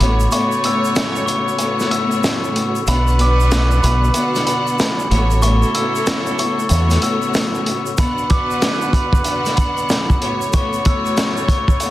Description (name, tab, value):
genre	hip hop, boom-bap hip-hop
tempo	94 BPM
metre	4/4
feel	swing 63% on 16ths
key	unclear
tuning	A4 = 441 Hz
part	bright studio string section	accompaniment	0.0-11.9 s	A2 to F#5	-22 LUFS	left 2 dB	high-pass filter, low-pass filter
part	percussive tonewheel organ	sustained chords	0.0-11.9 s	C#3 to F#4	-29 LUFS	right 2 dB	chorus vibrato, slow rotary speaker, high-pass filter, low-pass filter
part	clear horn section	stabs	0.0-11.9 s	F#3 to C#5	-27 LUFS	equal	high-pass filter, low-pass filter, tape echo
part	deep dub fingered electric bass	bass	0.0-7.0 s	A1 to E2	-14 LUFS	equal	none
part	crunchy breakbeat drum kit	drums	0.0-11.9 s	hi-hat, kick drum, snare drum	-19 LUFS	equal	none
part	tube shaker	percussion	0.2-11.9 s	none	-33 LUFS	right 6 dB	none
part	glockenspiel with rubber mallets	melody	0.3-11.8 s	B5 to E6	-21 LUFS	left 1 dB	high-pass filter, low-pass filter
room	light reverb, small room ambience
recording	dense, heavily limited modern master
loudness	-14 LUFS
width	side -15 dB against mid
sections	0.0-11.9 A section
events	break 0.0-8.0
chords	0.0 A6; 2.9 Bm; 5.1 A6; 8.0 Bm; 10.2 A6